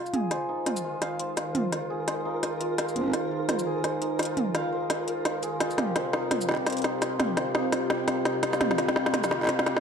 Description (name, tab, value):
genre	half-time drum and bass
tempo	170 BPM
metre	4/4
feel	swing 58% on 16ths, half-time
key	F minor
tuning	A4 = 440 Hz
part	dark analog pad	sustained chords	0.0-9.8 s	C4 to F5	-33 LUFS	left 1 dB	chorus, phaser
part	santur	arpeggios	0.0-9.8 s	Eb4 to F5	-31 LUFS	equal	low-pass filter, dub echo
part	flickering grainy texture	texture	0.9-9.8 s	Bb4	-37 LUFS	right 1 dB	built-in reverb
part	organic electronic drum kit	drums	0.1-9.8 s	hi-hat, shaker, snare drum, toms	-27 LUFS	equal	overdrive, studio reverb
room	wet digital room reverb, RT60 1.1 s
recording	dark, warm production, faint mains hum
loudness	-25 LUFS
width	side -6 dB against mid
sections	0.0-9.8 A section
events	build-up 0.0-9.8; drum fill 0.0-9.8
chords	0.0 Fm7; 5.6 Csus4